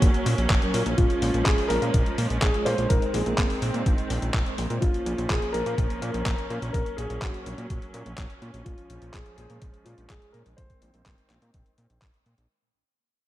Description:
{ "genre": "italo disco", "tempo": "125 BPM", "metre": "4/4", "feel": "straight", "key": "unclear", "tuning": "A4 = 442 Hz", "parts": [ { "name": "dark concert grand piano", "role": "melody", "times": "0.0-12.0 s", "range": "F4 to C5", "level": "-30 LUFS", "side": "left 1 dB", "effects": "digital delay" }, { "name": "clear studio string section", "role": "sustained chords", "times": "0.0-12.5 s", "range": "Eb3 to Db4", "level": "-34 LUFS", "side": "right 2 dB", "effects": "low-pass filter" }, { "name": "fat analog bass", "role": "bass", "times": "0.0-12.5 s", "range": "Bb1 to Bb2", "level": "-29 LUFS", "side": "equal", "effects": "none" }, { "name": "detuned 8-bit digital drum machine", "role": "drums", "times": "0.0-12.5 s", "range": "handclaps, hi-hat", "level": "-32 LUFS", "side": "equal", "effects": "studio reverb" }, { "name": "electronic kick drum", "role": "drums", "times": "0.0-12.1 s", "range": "none", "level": "-24 LUFS", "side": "equal", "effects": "studio reverb" }, { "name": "mellow synth brass", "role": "stabs", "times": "0.1-4.8 s", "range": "Gb3 to Db5", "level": "-32 LUFS", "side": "equal", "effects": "chorus" } ], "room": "light reverb", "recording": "dark, warm production", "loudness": "-22 LUFS", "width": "side -14 dB against mid", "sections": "0.0-12.5 A section", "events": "fade-out 0.0-12.5; filter sweep on string section 0.0-12.5", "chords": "0.0 Gb/Bb; 1.0 Db/Bb; 2.9 Ab/Bb; 4.8 Bbm; 6.7 Gb/Bb; 8.7 Db/Bb; 10.6 Ab/Bb" }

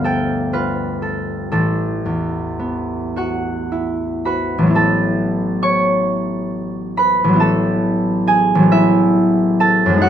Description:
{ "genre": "classical, solo harp piece", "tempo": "35-47 BPM (dotted quarters)", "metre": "6/8", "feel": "rubato", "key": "A major", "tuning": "A4 = 440 Hz", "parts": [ { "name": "concert harp", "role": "solo", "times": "0.0-10.1 s", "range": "G1 to C#6", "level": "-15 LUFS", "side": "equal", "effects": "none" } ], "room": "light reverb", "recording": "dark, warm production", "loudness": "-15 LUFS", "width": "side -9 dB against mid", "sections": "0.0-4.7 A section; 4.7-10.1 B section", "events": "none", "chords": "0.0 G9; 1.5 Asus2; 4.7 A69; 7.4 F#m11/A" }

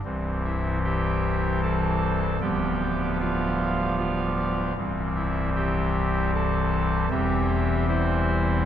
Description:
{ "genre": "classical, chorale-style piece for pipe organ", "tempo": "76 BPM", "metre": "3/4", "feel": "straight", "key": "C major", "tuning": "A4 = 440 Hz", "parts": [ { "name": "pipe organ, soft reed", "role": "solo", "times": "0.0-8.7 s", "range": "C1 to A5", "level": "-22 LUFS", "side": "equal", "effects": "none" } ], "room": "wet cathedral reverb, RT60 5.1 s", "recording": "dark, warm production", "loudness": "-23 LUFS", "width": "side -10 dB against mid", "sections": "0.0-8.7 A section", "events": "none", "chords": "0.0 C; 2.4 G7/D; 4.8 C; 7.1 C/E" }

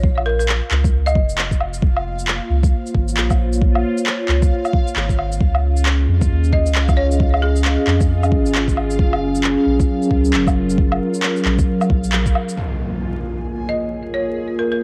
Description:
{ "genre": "future garage", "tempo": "134 BPM", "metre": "4/4", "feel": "swing 61% on 16ths", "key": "Bb minor", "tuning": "A4 = 440 Hz", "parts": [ { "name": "folk marimba with hard mallets", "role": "melody", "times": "0.0-1.5, 6.5-7.8, 13.7-14.8 s", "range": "Ab4 to Eb5", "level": "-26 LUFS", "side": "equal", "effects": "cassette tape, tape echo" }, { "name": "soft dub sub bass", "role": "bass", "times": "0.0-12.3 s", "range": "F1 to F2", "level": "-21 LUFS", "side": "equal", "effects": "sidechain pumping" }, { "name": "electronic kick drum", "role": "drums", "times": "0.0-12.3 s", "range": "none", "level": "-20 LUFS", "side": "equal", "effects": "overdrive" }, { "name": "backwards swelling texture", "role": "texture", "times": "0.0-14.8 s", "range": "F4 to Ab5", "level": "-34 LUFS", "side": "equal", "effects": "built-in reverb, cassette tape" }, { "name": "electronic woodblock, shaker and handclaps", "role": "drums", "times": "0.2-12.6 s", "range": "none", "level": "-25 LUFS", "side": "equal", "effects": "overdrive" }, { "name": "warbly tape-like pad", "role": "sustained chords", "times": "2.2-14.8 s", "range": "Gb3 to F5", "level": "-24 LUFS", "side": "equal", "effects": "chorus, built-in reverb, sidechain pumping, cassette tape" }, { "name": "impact", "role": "sound effects", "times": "12.6-14.4 s", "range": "none", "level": "-29 LUFS", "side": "equal", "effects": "none" } ], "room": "light reverb", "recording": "home recording on cassette, vinyl crackle", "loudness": "-18 LUFS", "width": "mono", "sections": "0.0-12.6 A section; 12.6-14.8 B section", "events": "band accent 12.1; impact 12.6-14.4", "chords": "0.0 Bbm9; 5.4 Db69; 9.0 Gbmaj9; 12.6 Bbm7" }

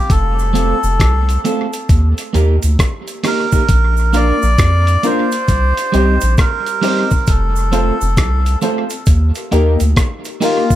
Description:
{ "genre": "roots reggae", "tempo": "67 BPM", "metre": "4/4", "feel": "swing 64% on 16ths", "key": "unclear", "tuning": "A4 = 439 Hz", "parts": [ { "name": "melodica", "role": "melody", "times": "0.0-10.8 s", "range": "F4 to D5", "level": "-20 LUFS", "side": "right 1 dB", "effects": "tape echo" }, { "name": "soft dub sub bass", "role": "bass", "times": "0.1-9.9 s", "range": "F1 to F2", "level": "-14 LUFS", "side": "equal", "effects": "none" }, { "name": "dusty soul sampler-style drum kit", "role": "drums", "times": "0.1-10.8 s", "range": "hi-hat, kick drum, rim click", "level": "-15 LUFS", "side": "equal", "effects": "none" }, { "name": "cabasa", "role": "percussion", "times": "0.1-10.8 s", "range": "none", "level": "-31 LUFS", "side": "right 8 dB", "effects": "none" }, { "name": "electric guitar at the edge of break-up", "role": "accompaniment", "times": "0.5-10.6 s", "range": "G3 to Bb4", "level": "-21 LUFS", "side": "right 3 dB", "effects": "tape echo" }, { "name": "dark upright piano", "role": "stabs", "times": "4.1-10.7 s", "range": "Bb3 to C5", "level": "-22 LUFS", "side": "left 6 dB", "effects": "none" } ], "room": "light reverb", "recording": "none", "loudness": "-12 LUFS", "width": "side -13 dB against mid", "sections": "0.0-10.8 A section", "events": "none", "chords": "0.1 F; 1.9 Eb; 3.7 Bb; 5.5 Cm; 7.3 F; 9.1 Eb" }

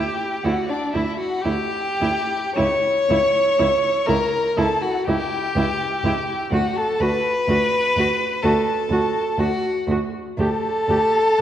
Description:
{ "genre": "classical, slow romantic movement for string quartet", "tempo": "51-63 BPM", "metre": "4/4", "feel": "rubato", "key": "D major", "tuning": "A4 = 441 Hz", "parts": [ { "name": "rich violin", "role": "melody", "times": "0.0-11.4 s", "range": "D5 to C#6", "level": "-27 LUFS", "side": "left 4 dB", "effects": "none" }, { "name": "rich violin", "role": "second line", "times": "0.0-11.4 s", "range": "D4 to C#5", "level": "-21 LUFS", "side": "equal", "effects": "none" }, { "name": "rich viola", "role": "accompaniment", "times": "0.0-11.4 s", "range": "E4 to G4", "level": "-27 LUFS", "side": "right 2 dB", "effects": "none" }, { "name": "clear cello", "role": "bass", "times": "0.4-11.0 s", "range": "C#2 to D2", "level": "-25 LUFS", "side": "right 2 dB", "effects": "none" } ], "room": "wet scoring stage reverb, RT60 1.6 s", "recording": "worn, warbling old tape, cassette tape, warbly pitch drift", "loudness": "-18 LUFS", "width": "side -10 dB against mid", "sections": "0.0-11.4 A section", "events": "none", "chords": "0.0 Em7/D; 2.6 C#dim; 6.5 D; 10.4 Gsus2" }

